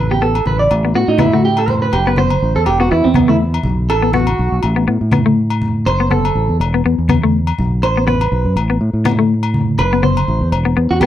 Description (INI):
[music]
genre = highlife guitar band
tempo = 122 BPM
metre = 4/4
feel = swing 54% on 16ths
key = unclear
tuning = A4 = 438 Hz
[part]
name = electric guitar at the edge of break-up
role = arpeggios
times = 0.0-11.1 s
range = B3 to D5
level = -16 LUFS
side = right 4 dB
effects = spring reverb, slapback echo
[part]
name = fingered electric bass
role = bass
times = 0.0-11.1 s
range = E1 to A2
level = -16 LUFS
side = equal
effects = none
[part]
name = clean electric guitar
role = accompaniment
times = 0.1-11.1 s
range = A3 to B3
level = -17 LUFS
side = left 6 dB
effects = wide subtle chorus
[part]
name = agogo bells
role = percussion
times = 0.4-11.1 s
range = none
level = -26 LUFS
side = left 9 dB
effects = none
[part]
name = congas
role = percussion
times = 0.5-11.1 s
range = none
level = -21 LUFS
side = right 1 dB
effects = none
[sound]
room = little or no reverb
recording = dry, close 1970s-style studio recording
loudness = -12 LUFS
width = side -11 dB against mid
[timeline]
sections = 0.7-11.1 A section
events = clean electric guitar solo 0.7-11.1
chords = 0.0 Asus2; 2.7 E5; 3.7 B5; 4.6 Asus2; 6.6 E5; 7.6 B5; 8.6 Amadd9; 10.5 E5